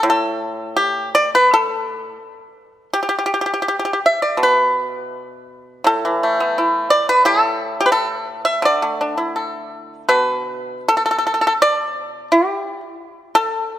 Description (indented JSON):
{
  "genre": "chinese traditional, Chinese solo plucked strings",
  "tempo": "79-89 BPM",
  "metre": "2/4",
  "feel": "rubato",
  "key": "unclear",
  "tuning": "A4 = 445 Hz",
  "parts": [
    { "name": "pipa", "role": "solo", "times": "0.0-13.8 s", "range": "A2 to E5", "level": "-16 LUFS", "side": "equal", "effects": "none" }
  ],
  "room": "moderate concert hall reverb, RT60 2.4 s",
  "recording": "none",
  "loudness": "-15 LUFS",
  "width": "side -12 dB against mid",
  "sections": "0.0-10.1 A section; 10.1-13.8 B section",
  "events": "none",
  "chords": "none"
}